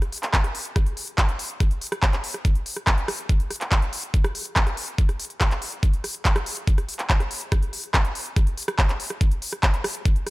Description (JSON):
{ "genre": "trance", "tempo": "142 BPM", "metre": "4/4", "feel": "straight", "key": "none", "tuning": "none", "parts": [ { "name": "big-room dance drum kit", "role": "drums", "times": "0.0-10.3 s", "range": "handclaps, hi-hat, rim click", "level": "-26 LUFS", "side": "equal", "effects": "overdrive" }, { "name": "electronic kick drum", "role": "drums", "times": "0.3-10.1 s", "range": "none", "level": "-20 LUFS", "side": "equal", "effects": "none" } ], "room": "little or no reverb", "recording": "none", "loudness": "-21 LUFS", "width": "side -21 dB against mid", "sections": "0.0-10.3 A section", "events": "none", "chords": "none" }